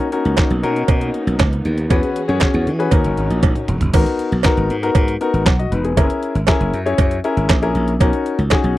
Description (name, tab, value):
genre	early-eighties boogie funk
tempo	118 BPM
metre	4/4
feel	straight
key	G# minor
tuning	A4 = 441 Hz
part	clear baby grand piano	accompaniment	0.0-8.8 s	B3 to F#5	-20 LUFS	left 4 dB	none
part	warm symphonic string section	sustained chords	0.0-3.9 s	E3 to G#4	-28 LUFS	right 1 dB	none
part	detuned 8-bit digital drum machine	drums	0.1-8.8 s	crash cymbal, handclaps, hi-hat, kick drum, snare drum, toms	-17 LUFS	equal	none
part	slap bass	bass	0.3-8.7 s	E1 to E3	-19 LUFS	equal	none
part	cowbell	percussion	0.4-8.6 s	none	-24 LUFS	right 16 dB	none
room	little or no reverb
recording	dry, close 1970s-style studio recording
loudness	-14 LUFS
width	side -15 dB against mid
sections	0.0-3.9 A section; 3.9-8.8 B section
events	drum fill 3.4-3.9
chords	0.0 Bmaj9; 1.9 E69; 2.9 D#m7; 3.9 G#m9; 6.0 F#9; 8.0 Bmaj9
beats	0.38 0.89 1.40 | 1.90 2.41 2.92 3.43 | 3.94 4.45 4.96 5.46 | 5.97 6.48 6.99 7.50 | 8.01 8.51